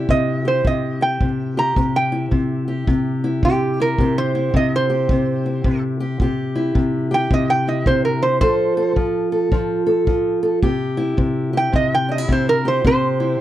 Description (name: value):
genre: acoustic country blues, solo or duo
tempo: 108 BPM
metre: 4/4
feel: swing 63% on 8ths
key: C mixolydian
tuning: A4 = 440 Hz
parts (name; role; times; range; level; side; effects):
- fingerpicked steel-string acoustic guitar; accompaniment; 0.0-13.4 s; C3 to A4; -19 LUFS; left 1 dB; none
- metal-body resonator slide guitar; melody; 0.1-13.4 s; G4 to Bb5; -19 LUFS; right 2 dB; none
- kick drum; drums; 0.1-13.0 s; none; -22 LUFS; equal; none
room: little or no reverb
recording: none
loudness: -16 LUFS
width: side -13 dB against mid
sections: 0.0-13.4 A section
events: resonator guitar played with a steel bar solo 0.0-13.4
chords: 0.0 C; 8.4 F; 10.6 C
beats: 0.09 0.65 1.21 | 1.76 2.32 2.88 3.43 | 3.99 4.54 5.10 5.65 | 6.21 6.76 7.31 7.87 | 8.42 8.97 9.53 10.08 | 10.63 11.19 11.74 12.30 | 12.85